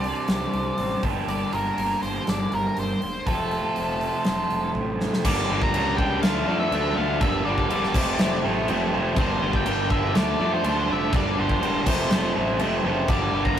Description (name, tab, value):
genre	quiet-loud alternative rock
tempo	122 BPM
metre	4/4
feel	straight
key	G minor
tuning	A4 = 438 Hz
part	octave-fuzz lead guitar	melody	0.0-13.6 s	A4 to Bb5	-29 LUFS	left 1 dB	distortion
part	electric guitar at the edge of break-up	arpeggios	0.0-5.2 s	F2 to D4	-32 LUFS	left 3 dB	none
part	biting overdriven guitar	riff	0.0-13.6 s	F2 to G4	-26 LUFS	right 3 dB	none
part	fuzz fingered electric bass	bass	0.0-13.6 s	E1 to F2	-30 LUFS	equal	overdrive
part	huge arena drum kit	drums	0.0-13.6 s	crash cymbal, hi-hat, kick drum, snare drum	-27 LUFS	equal	none
part	crunchy overdriven guitar	riff	5.3-13.6 s	F2 to D4	-27 LUFS	left 4 dB	none
room	moderate small room reverb, RT60 0.5 s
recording	rough rehearsal-room recording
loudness	-21 LUFS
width	side -9 dB against mid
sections	0.0-5.2 A section; 5.2-13.6 B section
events	drum fill 4.7-5.2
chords	0.0 Csus2; 1.0 Gm; 3.3 F; 5.2 Gm; 6.2 Dm; 7.2 Gm; 7.9 F; 9.2 Gm; 10.1 Dm; 11.1 Gm; 11.9 F; 13.1 Gm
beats	0.29 0.79 | 1.29 1.78 2.28 2.77 | 3.27 3.76 4.25 4.75 | 5.24 5.73 6.22 6.71 | 7.20 7.69 8.18 8.67 | 9.16 9.65 10.14 10.63 | 11.12 11.61 12.10 12.59 | 13.08 13.57